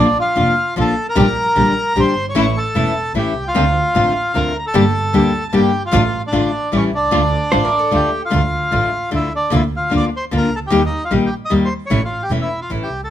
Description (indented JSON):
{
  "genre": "tango",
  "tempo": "151 BPM",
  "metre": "3/4",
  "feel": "rubato",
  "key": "D minor",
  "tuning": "A4 = 442 Hz",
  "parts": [
    { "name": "bandoneon", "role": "melody", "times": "0.0-13.1 s", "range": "C#4 to Eb6", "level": "-19 LUFS", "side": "equal", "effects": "none" },
    { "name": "nylon-string guitar", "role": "accompaniment", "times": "0.0-12.9 s", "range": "D3 to G4", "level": "-18 LUFS", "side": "left 3 dB", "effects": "none" },
    { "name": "muted studio string section", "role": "stabs", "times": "0.0-8.1 s", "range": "A3 to G4", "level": "-25 LUFS", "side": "right 1 dB", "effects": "none" },
    { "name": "warm double bass", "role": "bass", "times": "0.0-13.1 s", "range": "E1 to Eb2", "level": "-21 LUFS", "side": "right 3 dB", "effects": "none" },
    { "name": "vintage hollow-body jazz guitar", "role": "second line", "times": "7.5-8.3 s", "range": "A4 to C5", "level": "-22 LUFS", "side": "right 2 dB", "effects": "none" }
  ],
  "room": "light reverb",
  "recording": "close, detailed microphones",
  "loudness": "-14 LUFS",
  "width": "side -11 dB against mid",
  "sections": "0.0-8.3 A section; 8.3-13.1 B section",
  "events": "none",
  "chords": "0.0 Bb; 1.2 Gm/Bb; 2.4 A; 3.6 Dm7; 4.7 Gm; 5.9 Dm/A; 6.7 A7; 7.1 Dm; 9.5 Bb/D; 10.7 Eb; 11.9 A",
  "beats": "0.37 0.77 | 1.17 1.56 1.96 | 2.36 2.75 3.15 | 3.55 3.95 4.35 | 4.75 5.14 5.54 | 5.94 6.34 6.73 | 7.13 7.53 7.93 | 8.33 8.73 9.13 | 9.53 9.92 10.32 | 10.72 11.12 11.51 | 11.91 12.31 12.71"
}